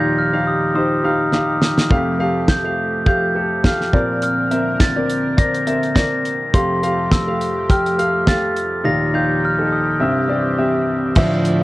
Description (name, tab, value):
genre	piano-driven pop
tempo	104 BPM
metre	4/4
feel	swing 56% on 16ths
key	F major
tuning	A4 = 440 Hz
part	glockenspiel with rubber mallets	melody	0.0-10.8 s	C6 to Bb6	-21 LUFS	equal	none
part	clear grand piano	accompaniment	0.0-11.6 s	C2 to G5	-19 LUFS	equal	none
part	chorused pulse-width pad	sustained chords	0.0-11.6 s	D3 to E5	-27 LUFS	right 1 dB	none
part	damped 70s drum kit	drums	1.3-11.6 s	crash cymbal, hi-hat, kick drum, snare drum	-16 LUFS	equal	none
part	picked steel-string acoustic guitar	riff	11.2-11.6 s	D3 to F4	-20 LUFS	right 3 dB	none
room	moderate studio reverb, RT60 0.6 s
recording	worn, warbling old tape, cassette tape, warbly pitch drift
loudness	-15 LUFS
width	side -18 dB against mid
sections	0.0-11.2 A section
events	drum fill 1.3-1.9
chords	0.0 Ebadd9; 1.9 Fadd9; 3.9 Bbadd9; 6.5 Fadd9; 8.8 Ebadd9; 10.0 C